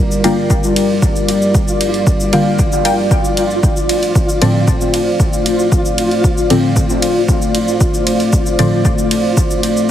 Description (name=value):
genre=dub techno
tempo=115 BPM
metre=4/4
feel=straight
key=unclear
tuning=A4 = 443 Hz
part: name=dark analog pad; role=sustained chords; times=0.0-9.9 s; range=G3 to D5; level=-16 LUFS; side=left 1 dB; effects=chorus, vintage 12-bit sampler grit, sidechain pumping
part: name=flickering grainy texture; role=texture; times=0.0-9.9 s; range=F4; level=-23 LUFS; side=right 1 dB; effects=built-in reverb, sidechain pumping
part: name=deep house drum kit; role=drums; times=0.1-9.9 s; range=hi-hat, ride cymbal, shaker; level=-23 LUFS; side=right 1 dB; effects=studio ambience
part: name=filtered dub chord stab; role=riff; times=0.2-8.7 s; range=F4 to G5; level=-24 LUFS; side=left 2 dB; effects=phaser, sidechain pumping, dub echo
part: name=deep mellow chord stab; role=stabs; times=0.2-8.9 s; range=A2 to F4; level=-17 LUFS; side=equal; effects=chorus, phaser, vintage 12-bit sampler grit, sidechain pumping, dub echo
part: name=electronic kick drum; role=drums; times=0.5-9.5 s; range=none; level=-15 LUFS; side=equal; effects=studio ambience
room=moderate echo chamber reverb, RT60 2.1 s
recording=heavily compressed radio sound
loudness=-11 LUFS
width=side -11 dB against mid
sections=0.0-9.9 A section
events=none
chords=0.0 Gm7; 3.6 Dm7